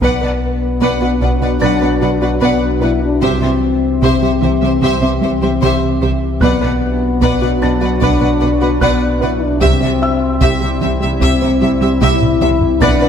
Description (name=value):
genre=cinematic, hybrid orchestral and electronic film score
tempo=75 BPM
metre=4/4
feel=straight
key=B phrygian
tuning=A4 = 441 Hz
part: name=warm symphonic violin section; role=melody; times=0.0-13.1 s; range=E5 to F#5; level=-25 LUFS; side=left 4 dB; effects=none
part: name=clear symphonic violin section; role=second line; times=0.0-13.1 s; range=C5 to E5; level=-23 LUFS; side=left 2 dB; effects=none
part: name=warm symphonic viola section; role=accompaniment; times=0.0-13.1 s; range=G4 to B4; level=-22 LUFS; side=right 2 dB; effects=none
part: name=dark analog pad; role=sustained chords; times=0.5-13.1 s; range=D3 to F#5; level=-21 LUFS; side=left 1 dB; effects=chorus, phaser
part: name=mellow French horn section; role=sustained chords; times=0.0-13.1 s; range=B3 to E4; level=-17 LUFS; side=left 4 dB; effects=none
part: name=soft round pluck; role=arpeggios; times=0.0-13.1 s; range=C3 to B4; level=-23 LUFS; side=right 4 dB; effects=none
part: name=rich symphonic cello section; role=bass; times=0.0-13.1 s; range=B2 to C3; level=-23 LUFS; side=right 4 dB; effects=none
part: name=rich symphonic double bass section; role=bass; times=0.0-12.9 s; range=B1 to C2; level=-23 LUFS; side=right 3 dB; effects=none
part: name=sub bass with octave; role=bass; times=0.0-13.1 s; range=B1 to C2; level=-20 LUFS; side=equal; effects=none
part: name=taiko ensemble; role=drums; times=0.0-1.6, 6.4-13.1 s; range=none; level=-20 LUFS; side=equal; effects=none
part: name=felt-muted upright piano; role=texture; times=0.0-13.1 s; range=E5 to A6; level=-27 LUFS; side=left 1 dB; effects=digital delay
room=wet scoring stage reverb, RT60 2.1 s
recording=none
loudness=-12 LUFS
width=side -8 dB against mid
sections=0.0-13.1 A section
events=drum fill 12.0-12.8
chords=0.0 Bm; 3.2 C; 6.4 Bm; 9.6 C